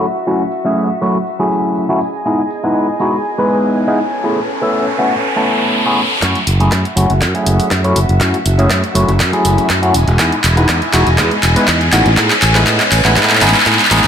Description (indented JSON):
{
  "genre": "filtered disco house",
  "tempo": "121 BPM",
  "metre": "4/4",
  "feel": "swing 53% on 16ths",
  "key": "F# dorian",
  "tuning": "A4 = 440 Hz",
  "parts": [
    { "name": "overdriven tine electric piano", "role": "accompaniment", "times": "0.0-14.1 s", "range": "F#3 to B4", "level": "-15 LUFS", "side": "equal", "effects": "phaser, sidechain pumping, low-pass filter" },
    { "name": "warm chamber violin section", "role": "sustained chords", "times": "0.0-14.1 s", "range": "C#4 to G#5", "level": "-22 LUFS", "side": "left 1 dB", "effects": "sidechain pumping, low-pass filter" },
    { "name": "tambourine", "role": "percussion", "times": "0.0-14.1 s", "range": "none", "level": "-30 LUFS", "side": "left 4 dB", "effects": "none" },
    { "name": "riser", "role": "sound effects", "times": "3.3-14.1 s", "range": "none", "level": "-20 LUFS", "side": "equal", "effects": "none" },
    { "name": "modern bright fingered electric bass", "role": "bass", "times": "6.2-14.1 s", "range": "E1 to A2", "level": "-14 LUFS", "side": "equal", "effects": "sidechain pumping, low-pass filter" },
    { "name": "electronic kick drum", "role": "drums", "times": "6.2-13.8 s", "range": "none", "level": "-22 LUFS", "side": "equal", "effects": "high-pass filter on kick" },
    { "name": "punchy analog drum machine", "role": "drums", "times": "6.2-14.1 s", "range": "handclaps, hi-hat", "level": "-15 LUFS", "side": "equal", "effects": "overdrive, high-pass filter on snare, sidechain pumping on hats, high-pass filter on hats, high-pass filter on room" }
  ],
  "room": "moderate echo chamber reverb, RT60 1.5 s, digital ambience",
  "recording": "none",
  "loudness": "-11 LUFS",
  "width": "side -8 dB against mid",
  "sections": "0.0-6.2 A section; 6.2-14.1 B section",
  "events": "filter sweep 0.0-6.2, 6.2-14.1; riser 3.3-6.2, 6.2-14.1; build-up 6.2-14.1; drum fill 6.2-14.1",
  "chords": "0.0 F#m7; 2.0 Emaj7; 4.0 Amaj9; 6.2 F#m7; 9.9 Emaj7; 11.9 Amaj9"
}